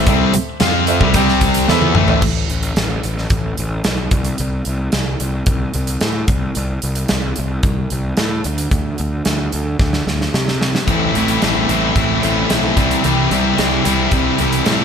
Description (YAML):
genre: classic rock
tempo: 111 BPM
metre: 4/4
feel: straight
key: unclear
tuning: A4 = 440 Hz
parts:
  - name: bright upright piano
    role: accompaniment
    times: 0.0-2.2 s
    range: G4 to G5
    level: -23 LUFS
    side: right 4 dB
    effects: none
  - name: distorted electric guitar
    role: riff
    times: 0.0-2.2, 10.9-14.8 s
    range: A2 to F4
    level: -18 LUFS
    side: left 12 dB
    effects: overdrive
  - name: sludgy distorted guitar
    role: riff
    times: 0.0-2.2, 10.9-14.8 s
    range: A2 to F4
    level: -18 LUFS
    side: right 10 dB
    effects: overdrive
  - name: fuzz picked electric bass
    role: bass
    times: 0.0-14.8 s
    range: A1 to C3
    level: -20 LUFS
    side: equal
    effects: overdrive
  - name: big rock drum kit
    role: drums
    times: 0.1-14.8 s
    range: crash cymbal, hi-hat, kick drum, snare drum, toms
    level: -19 LUFS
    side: equal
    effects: none
  - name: picked steel-string acoustic guitar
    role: accompaniment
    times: 10.9-14.8 s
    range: A2 to C5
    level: -24 LUFS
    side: left 4 dB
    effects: none
room: little or no reverb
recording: none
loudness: -14 LUFS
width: side -7 dB against mid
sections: 0.0-2.2 A section; 2.2-14.8 B section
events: drum fill 1.7-2.2, 9.8-10.9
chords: 0.0 Am; 1.1 C5; 1.7 Am; 2.2 N.C.; 8.7 Csus2/D; 10.9 Am; 12.8 C